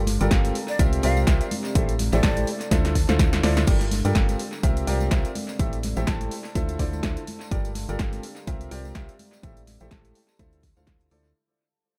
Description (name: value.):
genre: piano house.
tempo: 125 BPM.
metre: 4/4.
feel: swing 56% on 16ths.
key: G dorian.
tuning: A4 = 445 Hz.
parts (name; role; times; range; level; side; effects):
organ-like FM bass; bass; 0.0-11.3 s; G1 to G2; -28 LUFS; equal; sidechain pumping.
deep dark ambient pad; texture; 0.0-11.4 s; C4 to A5; -41 LUFS; equal; none.
punchy analog drum machine; drums; 0.1-11.2 s; crash cymbal, hi-hat, snare drum; -33 LUFS; equal; overdrive, tape echo.
congas and tambourine; percussion; 0.1-11.3 s; none; -37 LUFS; equal; tape echo.
clear grand piano; riff; 0.2-11.3 s; D3 to A5; -32 LUFS; equal; sidechain pumping, low-pass filter, tape echo.
electronic kick drum; drums; 0.3-11.0 s; none; -26 LUFS; equal; none.
breathy jazz flute; melody; 0.7-2.5 s; D5 to F5; -35 LUFS; equal; tape echo.
room: digital ambience.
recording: echo-heavy mix.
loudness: -23 LUFS.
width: mono.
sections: 0.0-3.7 A section; 3.7-11.4 B section.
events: drum fill 2.7-3.7; fade-out 3.7-11.4.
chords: 0.0 Gm9; 0.6 C9sus4; 1.5 Am7; 2.7 Dm9; 3.7 Gm9; 4.4 C9sus4; 5.4 Am7; 6.6 Dm9; 7.5 Gm9; 8.2 C9sus4; 9.2 Am7; 10.4 Dm9.